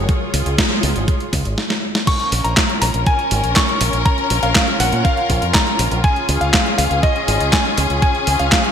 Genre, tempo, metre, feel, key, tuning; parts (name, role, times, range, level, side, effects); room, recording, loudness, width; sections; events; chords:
italo disco; 121 BPM; 4/4; straight; A4 = 440 Hz
rich studio string section; sustained chords; 0.0-8.7 s; Db4 to Db5; -22 LUFS; left 1 dB
fingered electric bass with an envelope filter; bass; 0.0-8.5 s; Ab1 to Bb2; -21 LUFS; equal; tube saturation
clean 12-bit digital drum machine; drums; 0.1-8.7 s; crash cymbal, handclaps, hi-hat, snare drum; -19 LUFS; equal; overdrive, gated reverb
electronic kick drum; drums; 0.1-8.6 s; -18 LUFS; equal; overdrive
clear electric grand piano; melody; 2.1-8.7 s; Eb5 to Db6; -20 LUFS; left 1 dB; ping-pong delay
moderate lush hall reverb, RT60 2.0 s; bright 1980s-style digital production; -14 LUFS; side -8 dB against mid
0.0-2.1 A section; 2.1-8.7 B section
drum fill 1.6-2.1
0.1 Db; 2.1 Bbm; 6.0 Db